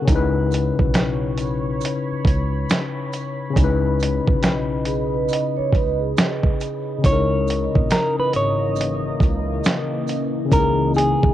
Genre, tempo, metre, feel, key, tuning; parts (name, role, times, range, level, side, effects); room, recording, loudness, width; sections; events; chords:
lo-fi hip hop; 69 BPM; 4/4; swing 63% on 16ths; C# dorian; A4 = 438 Hz
barky tine electric piano; accompaniment; 0.0-11.3 s; C#3 to B4; -23 LUFS; left 5 dB; medium stereo tremolo, cassette tape
deep dark ambient pad; sustained chords; 0.0-11.3 s; C#3 to B5; -29 LUFS; right 1 dB; chorus, built-in reverb
upright bass; bass; 0.1-11.3 s; G#1 to C#2; -26 LUFS; right 1 dB
dusty soul sampler-style drum kit; drums; 0.1-11.3 s; hi-hat, kick drum, snare drum; -19 LUFS; right 1 dB; overdrive, cassette tape
maracas; percussion; 0.1-11.2 s; -42 LUFS; right 12 dB
vibraphone with soft mallets; second line; 4.9-7.0 s; G#4 to D#5; -26 LUFS; right 11 dB; tape echo
semi-hollow electric guitar; melody; 7.1-11.3 s; G#4 to C#5; -22 LUFS; right 1 dB; warbly pitch drift, cassette tape
small room ambience; home recording on cassette; -18 LUFS; side -12 dB against mid
0.0-7.0 A section; 7.0-11.3 B section
0.1 C#m9; 7.0 C#m69